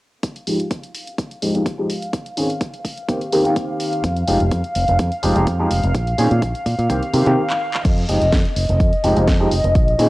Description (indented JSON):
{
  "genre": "filtered disco house",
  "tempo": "126 BPM",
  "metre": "4/4",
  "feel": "swing 53% on 16ths",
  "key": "F minor",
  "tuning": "A4 = 440 Hz",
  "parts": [
    { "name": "warm studio violin section", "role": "sustained chords", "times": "0.2-10.1 s", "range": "Eb5 to F5", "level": "-23 LUFS", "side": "equal", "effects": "sidechain pumping, low-pass filter, cassette tape" },
    { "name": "electronic kick drum", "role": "drums", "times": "0.2-9.9 s", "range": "none", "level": "-20 LUFS", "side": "equal", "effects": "high-pass filter on kick, small room reverb, cassette tape" },
    { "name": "house drum kit", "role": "drums", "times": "0.2-10.1 s", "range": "crash cymbal, handclaps, hi-hat, snare drum", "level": "-28 LUFS", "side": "equal", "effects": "sidechain pumping on hats, small room reverb, cassette tape, sidechain pumping on cymbals" },
    { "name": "clear grand piano", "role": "accompaniment", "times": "0.5-10.1 s", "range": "Eb3 to Ab4", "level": "-19 LUFS", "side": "equal", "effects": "phaser, sidechain pumping, low-pass filter, cassette tape" },
    { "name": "modern bright fingered electric bass", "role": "bass", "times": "4.0-10.1 s", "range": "F1 to C3", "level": "-19 LUFS", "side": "equal", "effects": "tube saturation, sidechain pumping, low-pass filter" }
  ],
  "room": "light reverb",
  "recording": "home recording on cassette",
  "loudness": "-16 LUFS",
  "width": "side -19 dB against mid",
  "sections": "0.2-7.8 A section; 7.8-10.1 B section",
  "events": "filter sweep 0.2-7.8, 7.8-10.1; break 7.4-7.8; drum fill 7.5-7.8",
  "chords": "0.2 Fm9; 2.1 N.C.; 3.1 Cm7; 4.0 Fm9; 5.9 Bb5; 6.9 Cm7; 7.8 Fm9"
}